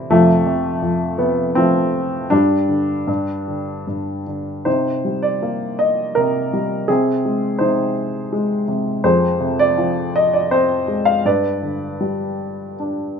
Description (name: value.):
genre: classical, lyrical solo piano.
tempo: 74-85 BPM.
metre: 3/4.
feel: rubato.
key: C minor from 4.7 s.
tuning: A4 = 440 Hz.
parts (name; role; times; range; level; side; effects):
warm baby grand piano; solo; 0.0-13.2 s; F2 to F5; -16 LUFS; equal; none.
room: moderate small room reverb, RT60 0.6 s.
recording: nothing above 7.7 kHz.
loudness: -16 LUFS.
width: side -6 dB against mid.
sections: 0.0-4.7 A section; 4.7-13.2 B section.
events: none.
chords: 0.1 F; 2.3 G5; 4.7 Cm7; 6.9 Ab/C; 9.0 Fm; 11.3 G.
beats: | 0.11 0.83 1.57 | 2.32 3.09 3.88 | 4.67 5.43 6.17 | 6.89 7.61 8.32 | 9.04 9.78 10.52 | 11.25 12.00 12.79.